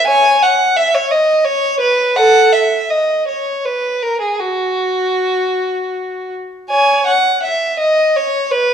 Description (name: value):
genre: classical, baroque-style suite movement for unaccompanied violin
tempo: 51-59 BPM (dotted quarters)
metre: 6/8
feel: rubato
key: unclear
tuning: A4 = 440 Hz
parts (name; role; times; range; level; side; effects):
- rich violin; solo; 0.0-8.7 s; F#4 to G#5; -12 LUFS; equal; none
room: moderate recital hall reverb, RT60 1.3 s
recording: dark, warm production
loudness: -12 LUFS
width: side -8 dB against mid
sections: 0.0-6.7 A section; 6.7-8.7 B section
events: none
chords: none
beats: | 0.07 1.10 | 2.16 3.27 | 4.40 5.55 | 6.71 7.80